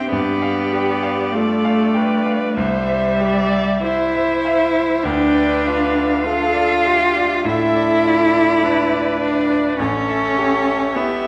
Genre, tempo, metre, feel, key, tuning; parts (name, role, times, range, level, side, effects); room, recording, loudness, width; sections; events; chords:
classical, slow romantic movement for piano quartet; 46-52 BPM; 4/4; rubato; A4 = 440 Hz
muted violin; melody; 0.0-11.3 s; C#5 to G5; -27 LUFS; equal
muted cello; second line; 0.0-11.3 s; G3 to F4; -20 LUFS; equal
bright grand piano; accompaniment; 0.0-11.3 s; A1 to G5; -26 LUFS; equal
muted viola; accompaniment; 0.0-11.3 s; G4 to D5; -26 LUFS; equal
wet recital hall reverb, RT60 1.6 s; -17 LUFS; mono
0.0-11.3 A section
0.1 G9; 2.6 C; 5.0 Dm; 9.8 A7